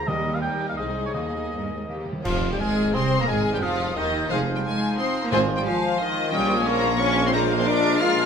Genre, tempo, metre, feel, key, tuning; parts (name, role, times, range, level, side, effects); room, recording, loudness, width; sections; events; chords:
classical, dramatic, fast romantic movement for symphony orchestra; 176 BPM; 3/4; straight; Ab major; A4 = 444 Hz
rich symphonic violin section; melody; 0.0-8.3 s; G4 to F6; -29 LUFS; left 2 dB
silver concert flute; second line; 0.0-8.3 s; Db5 to G6; -33 LUFS; left 2 dB
warm clarinet; second line; 0.0-8.3 s; Eb4 to C5; -34 LUFS; left 3 dB
warm oboe; second line; 0.0-8.3 s; Bb4 to C6; -32 LUFS; equal
warm symphonic violin section; second line; 0.0-8.3 s; Db4 to F5; -31 LUFS; equal
rich symphonic viola section; accompaniment; 0.0-8.3 s; Eb3 to F4; -31 LUFS; left 1 dB
dark French horn section; sustained chords; 0.0-8.1 s; Eb3 to Ab4; -29 LUFS; left 5 dB
clear symphonic double bass section; bass; 0.0-8.3 s; F1 to C3; -30 LUFS; right 4 dB
rich symphonic cello section; bass; 0.0-8.3 s; C2 to F4; -29 LUFS; right 1 dB
clear bassoon; accompaniment; 0.1-8.3 s; Eb3 to C4; -33 LUFS; right 1 dB
cymbal swell, clash cymbals and concert bass drum; percussion; 0.1-2.9 s; -36 LUFS; equal
timpani; percussion; 0.1-2.2, 5.3-5.8 s; Ab2 to Eb3; -35 LUFS; right 1 dB
mellow tuba; bass; 2.3-8.3 s; F1 to Eb2; -30 LUFS; right 4 dB
moderate recital hall reverb, RT60 1.4 s; minimal, uncompressed stereo recording; -21 LUFS; side -6 dB against mid
0.0-2.3 A section; 2.3-8.3 B section
timpani fill 1.9-2.3; band accent 2.3-2.6
0.1 Eb; 0.8 Ab/C; 1.2 Ebsus4; 1.9 Eb; 2.3 Ab; 3.3 Ab5; 4.3 Fm7; 5.3 Fm/Ab; 6.3 Bbm; 7.3 Bb7